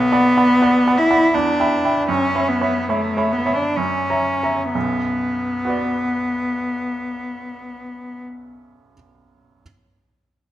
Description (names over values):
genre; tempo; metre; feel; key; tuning
classical, romantic duo for cello and grand piano; 59-82 BPM; 3/4; rubato; B minor; A4 = 440 Hz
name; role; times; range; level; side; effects
rich cello; melody; 0.0-8.2 s; A3 to E4; -19 LUFS; left 1 dB; none
bright baby grand piano; accompaniment; 0.0-9.6 s; B1 to B5; -21 LUFS; right 2 dB; none
room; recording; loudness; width
moderate recital hall reverb, RT60 1.6 s; none; -16 LUFS; side -13 dB against mid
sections
0.0-4.7 A section; 4.7-7.5 B section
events
slowing down 0.0-4.7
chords
0.0 Bm; 1.3 Em; 2.1 F#7sus4; 3.8 F#7; 4.7 Bm